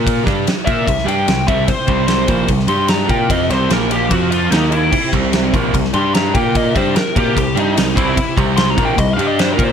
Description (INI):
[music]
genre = blues rock power trio and southern rock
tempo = 148 BPM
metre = 4/4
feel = straight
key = C mixolydian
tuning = A4 = 440 Hz
[part]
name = raw garage guitar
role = riff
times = 0.0-9.7 s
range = Bb2 to Bb4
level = -18 LUFS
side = right 1 dB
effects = overdrive
[part]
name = growling picked electric bass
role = bass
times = 0.0-9.7 s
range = Bb1 to Bb2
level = -21 LUFS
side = equal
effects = overdrive
[part]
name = big rock drum kit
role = drums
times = 0.1-9.7 s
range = crash cymbal, kick drum, ride cymbal, snare drum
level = -18 LUFS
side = equal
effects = none
[part]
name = biting lead guitar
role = melody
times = 0.7-9.7 s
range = Eb4 to C6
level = -20 LUFS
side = left 2 dB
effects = wah, overdrive, digital delay
[part]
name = percussive tonewheel organ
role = sustained chords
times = 1.7-9.7 s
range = G3 to C5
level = -29 LUFS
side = right 5 dB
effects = none
[sound]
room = studio reverb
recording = none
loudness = -13 LUFS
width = side -7 dB against mid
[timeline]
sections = 0.0-9.7 A section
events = lead electric guitar solo 0.0-9.7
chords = 0.3 C; 2.7 G5; 3.1 C; 3.7 Bb5; 4.1 F5; 4.5 Eb5; 4.9 C; 5.9 G5; 6.3 Bb5; 6.7 C; 9.2 G5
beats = | 0.05 0.46 0.86 1.27 | 1.68 2.08 2.49 2.89 | 3.30 3.70 4.11 4.52 | 4.92 5.33 5.73 6.14 | 6.54 6.95 7.36 7.76 | 8.17 8.57 8.98 9.38